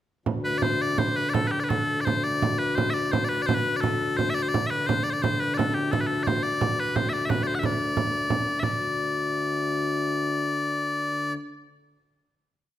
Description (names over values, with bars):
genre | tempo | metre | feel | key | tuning
medieval dance | 166-189 BPM | 3/4 | straight | unclear | A4 = 435 Hz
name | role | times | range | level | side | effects
hand-pumped harmonium | drone | 0.3-11.4 s | D2 | -30 LUFS | left 2 dB | none
frame drum | percussion | 0.3-8.8 s | none | -27 LUFS | right 4 dB | none
loud bright bagpipes | melody | 0.4-11.3 s | G4 to F#5 | -26 LUFS | left 2 dB | none
room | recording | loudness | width
wet recital hall reverb, RT60 1.3 s | none | -23 LUFS | side -12 dB against mid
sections
0.3-8.6 A section; 8.6-10.6 final note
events
speeding up 0.3-10.6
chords
none